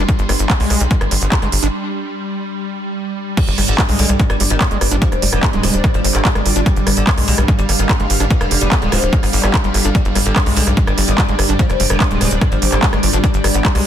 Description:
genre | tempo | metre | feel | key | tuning
psychedelic trance | 146 BPM | 4/4 | straight | unclear | A4 = 440 Hz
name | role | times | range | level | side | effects
metallic wobble bass | second line | 0.0-1.4, 4.5-13.2 s | G3 to F4 | -32 LUFS | right 2 dB | none
evolving wavetable pad | sustained chords | 0.0-13.9 s | G3 | -25 LUFS | right 1 dB | ensemble chorus, built-in reverb, sidechain pumping
screaming distorted acid line | riff | 0.0-13.9 s | G3 to D4 | -25 LUFS | moving between left 8 dB and right 8 dB | distortion, chorus, auto-pan, sidechain pumping, ping-pong delay
tight sequencer bass | bass | 0.0-13.8 s | D1 to B1 | -17 LUFS | equal | none
airy breathy pad | texture | 0.0-13.9 s | D4 to C6 | -25 LUFS | equal | chorus, sidechain pumping
electronic kick drum | drums | 0.1-13.7 s | none | -15 LUFS | equal | none
techno drum kit | drums | 0.1-13.8 s | crash cymbal, handclaps, hi-hat, rim click | -19 LUFS | right 2 dB | none
oud | melody | 3.4-13.8 s | G2 to D4 | -22 LUFS | left 1 dB | phaser, sidechain pumping, ping-pong delay
room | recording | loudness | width
digital ambience | dense, heavily limited modern master | -13 LUFS | side -10 dB against mid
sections
0.0-3.4 A section; 3.4-13.9 B section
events
break 1.7-3.4; drop 3.4-13.9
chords
0.0 G5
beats
| 0.09 0.50 0.91 1.32 | 1.73 2.14 2.55 2.96 | 3.37 3.79 4.20 4.61 | 5.02 5.43 5.84 6.25 | 6.66 7.07 7.48 7.89 | 8.30 8.72 9.13 9.54 | 9.95 10.36 10.77 11.18 | 11.59 12.00 12.41 12.83 | 13.24 13.65

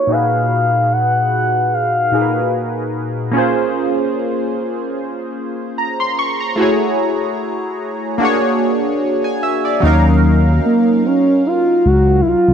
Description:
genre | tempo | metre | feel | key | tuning
contemporary R&B | 74 BPM | 4/4 | swing 54% on 16ths | unclear | A4 = 440 Hz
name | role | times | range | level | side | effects
gliding portamento lead | melody | 0.0-2.9, 10.7-12.5 s | Bb3 to Gb5 | -14 LUFS | equal | chorus, low-pass filter, tape echo
warm analog keys | accompaniment | 0.0-12.5 s | Bb2 to Db6 | -16 LUFS | equal | chorus, phaser, low-pass filter
smooth synth bass | bass | 9.8-12.5 s | C2 to Eb2 | -12 LUFS | equal | none
room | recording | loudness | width
light reverb | dark, warm production | -14 LUFS | side -7 dB against mid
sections
0.0-9.8 A section; 9.8-12.5 B section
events
filter sweep 0.0-9.8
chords
0.1 Abm9; 3.3 Bbm9; 6.6 Gbm9; 8.2 Bb7alt; 9.8 Ebm9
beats
| 0.10 0.91 1.72 2.53 | 3.34 4.16 4.97 5.78 | 6.59 7.40 8.21 9.02 | 9.83 10.64 11.45 12.26

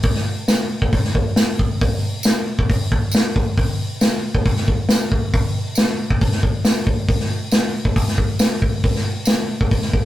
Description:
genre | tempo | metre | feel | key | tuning
rock | 137 BPM | 4/4 | straight | none | none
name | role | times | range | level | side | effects
vintage drum kit | drums | 0.0-10.0 s | hi-hat, kick drum, snare drum | -16 LUFS | equal | none
tambourine | percussion | 0.5-9.4 s | none | -27 LUFS | right 2 dB | none
room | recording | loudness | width
light reverb | rough rehearsal-room recording, tube saturation | -16 LUFS | side -14 dB against mid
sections
0.0-10.1 A section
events
none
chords
none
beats
| 0.04 0.48 0.93 1.37 | 1.81 2.25 2.69 3.13 | 3.57 4.01 4.45 4.89 | 5.33 5.77 6.21 6.64 | 7.08 7.52 7.96 8.39 | 8.83 9.27 9.71

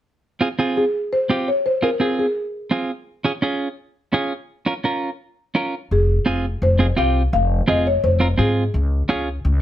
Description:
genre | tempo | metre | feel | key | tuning
latin, cumbia | 169 BPM | 4/4 | straight | F minor | A4 = 440 Hz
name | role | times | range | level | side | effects
semi-hollow electric guitar | accompaniment | 0.4-9.3 s | C4 to Bb4 | -20 LUFS | right 2 dB | warbly pitch drift
buzzing marimba with soft mallets | melody | 0.8-2.9, 5.9-8.6 s | Ab4 to F5 | -21 LUFS | left 2 dB | plate reverb
upright bass | bass | 5.9-9.6 s | F1 to Ab2 | -18 LUFS | left 1 dB | none
room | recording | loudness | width
light reverb | none | -18 LUFS | side -12 dB against mid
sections
0.2-5.9 A section; 5.9-9.6 B section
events
none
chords
0.2 Fm; 3.1 Db; 5.9 Fm; 8.7 Db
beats
| 0.24 0.59 0.95 1.30 | 1.66 2.01 2.37 2.72 | 3.08 3.43 3.78 4.14 | 4.49 4.85 5.20 5.56 | 5.91 6.26 6.62 6.97 | 7.33 7.68 8.03 8.39 | 8.74 9.10 9.45

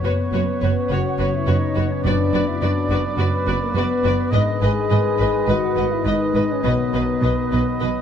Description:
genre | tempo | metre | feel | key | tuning
cinematic, heroic adventure film score | 104 BPM | 4/4 | straight | unclear | A4 = 441 Hz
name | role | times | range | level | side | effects
dark symphonic violin section | melody | 0.0-7.9 s | C#5 to D#5 | -30 LUFS | left 3 dB | none
clear oboe | second line | 0.0-8.0 s | C#5 to D#5 | -30 LUFS | right 3 dB | none
dark clarinet | second line | 0.0-8.0 s | B4 | -32 LUFS | equal | none
mellow flute section | second line | 0.0-8.0 s | A#4 to G#5 | -31 LUFS | left 1 dB | none
rich symphonic violin section | second line | 0.0-7.9 s | B4 | -33 LUFS | left 3 dB | none
rich symphonic viola section | accompaniment | 0.0-7.9 s | F#4 to B4 | -32 LUFS | right 1 dB | none
clear trombone section | sustained chords | 0.0-8.0 s | D#3 to B3 | -31 LUFS | right 3 dB | none
mellow French horn section | sustained chords | 0.0-8.0 s | A#3 to G#4 | -24 LUFS | left 5 dB | none
concert harp | arpeggios | 0.0-8.0 s | F#2 to B4 | -27 LUFS | left 8 dB | none
dark trumpet | stabs | 0.0-8.0 s | B4 to C#5 | -29 LUFS | right 3 dB | none
rich symphonic cello section | bass | 0.0-7.9 s | F#2 to B2 | -25 LUFS | right 3 dB | none
rich symphonic double bass section | bass | 0.0-7.9 s | F#1 to B1 | -25 LUFS | right 3 dB | none
timpani | percussion | 2.0-2.9 s | F#2 | -29 LUFS | equal | none
room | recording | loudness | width
moderate scoring stage reverb, RT60 1.6 s | none | -17 LUFS | side -8 dB against mid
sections
0.0-8.0 A section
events
none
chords
0.0 F#sus4; 2.0 Bm/F#; 4.3 G#m; 6.6 B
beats
0.32 0.90 1.47 | 2.05 2.62 3.19 3.75 | 4.33 4.91 5.48 6.05 | 6.64 7.22 7.81

